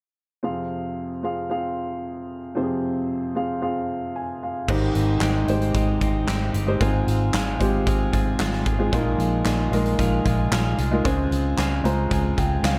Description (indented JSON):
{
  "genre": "piano-driven pop",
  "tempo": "113 BPM",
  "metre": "4/4",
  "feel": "straight",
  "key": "F minor",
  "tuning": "A4 = 440 Hz",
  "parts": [
    { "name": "dark upright piano", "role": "accompaniment", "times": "0.4-12.8 s", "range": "F2 to Bb5", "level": "-27 LUFS", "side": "equal", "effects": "none" },
    { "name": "direct-recorded clean electric guitar", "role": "riff", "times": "4.7-12.8 s", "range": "Bb2 to Ab4", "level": "-32 LUFS", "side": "equal", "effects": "spring reverb" },
    { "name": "vintage muted fingered electric bass", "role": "bass", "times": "4.7-12.8 s", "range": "G1 to Db2", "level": "-27 LUFS", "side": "equal", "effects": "none" },
    { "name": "huge arena drum kit", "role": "drums", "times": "4.7-12.8 s", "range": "crash cymbal, handclaps, hi-hat, kick drum, snare drum", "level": "-28 LUFS", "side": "equal", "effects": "none" }
  ],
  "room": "light reverb, studio ambience",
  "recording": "none",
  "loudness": "-23 LUFS",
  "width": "mono",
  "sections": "0.4-4.7 A section; 4.7-12.8 B section",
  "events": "upright piano fill 3.9-4.7, 11.6-12.8",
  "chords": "0.4 Fm; 4.7 Abmaj7; 6.8 Fm/Ab; 8.9 Bb7sus4; 11.1 Dbmaj7"
}